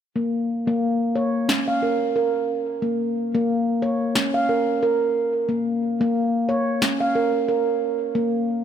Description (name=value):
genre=organic downtempo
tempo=90 BPM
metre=4/4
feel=swing 56% on 16ths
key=Bb minor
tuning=A4 = 438 Hz
part: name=handpan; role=arpeggios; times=0.2-8.3 s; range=Bb3 to F5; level=-20 LUFS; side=equal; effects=low-pass filter, tape echo
part: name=electronic snare drum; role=drums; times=1.5-7.0 s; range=none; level=-25 LUFS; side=left 1 dB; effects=none
room=wet lush hall reverb, RT60 3.2 s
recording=none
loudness=-20 LUFS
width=side -9 dB against mid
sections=0.2-8.6 A section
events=none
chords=none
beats=| 0.15 0.82 1.49 2.15 | 2.82 3.49 4.16 4.82 | 5.49 6.16 6.82 7.49 | 8.15